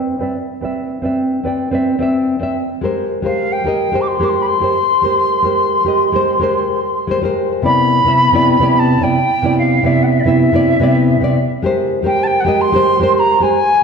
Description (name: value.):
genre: chillout.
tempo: 109 BPM.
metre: 4/4.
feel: straight.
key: C major.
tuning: A4 = 440 Hz.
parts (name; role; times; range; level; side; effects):
nylon-string guitar; accompaniment; 0.0-13.6 s; C3 to G5; -14 LUFS; moving between left 2 dB and right 4 dB; auto-pan, low-pass filter, tape echo.
wooden flute; melody; 3.3-13.8 s; D5 to D6; -15 LUFS; equal; digital delay.
room: wet recital hall reverb, RT60 1.6 s.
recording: dark, warm production.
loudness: -12 LUFS.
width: side -6 dB against mid.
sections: 0.0-7.6 A section; 7.6-13.8 B section.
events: filter sweep on nylon-string guitar 0.0-7.6.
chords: 0.0 Cmaj9; 3.0 Abmaj9; 7.6 Cmaj9; 11.8 Abmaj9.